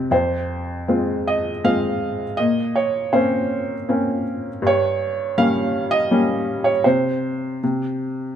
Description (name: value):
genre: classical, lyrical solo piano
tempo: 80 BPM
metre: 3/4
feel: rubato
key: F minor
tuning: A4 = 440 Hz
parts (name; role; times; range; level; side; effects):
- felt-muted upright piano; solo; 0.0-8.4 s; F2 to F5; -18 LUFS; equal; none
room: light reverb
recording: close, detailed microphones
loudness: -18 LUFS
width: side -9 dB against mid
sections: 0.1-8.4 A section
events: none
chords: 0.1 Fm; 2.4 Bbmadd9; 4.6 Gdim; 6.8 N.C.